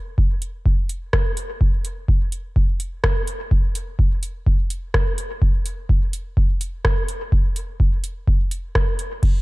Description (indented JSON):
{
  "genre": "techno",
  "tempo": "126 BPM",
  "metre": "4/4",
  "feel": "swing 55% on 16ths",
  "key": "none",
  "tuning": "none",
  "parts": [
    { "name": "electronic kick drum", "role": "drums", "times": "0.2-9.3 s", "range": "none", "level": "-18 LUFS", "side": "equal", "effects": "none" },
    { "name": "booming analog drum machine", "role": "drums", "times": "0.4-9.3 s", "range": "hi-hat, ride cymbal, rim click", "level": "-28 LUFS", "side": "equal", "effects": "dub echo" }
  ],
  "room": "little or no reverb",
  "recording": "dark, warm production",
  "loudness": "-19 LUFS",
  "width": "side -21 dB against mid",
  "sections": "0.0-9.4 A section",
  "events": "none",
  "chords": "none"
}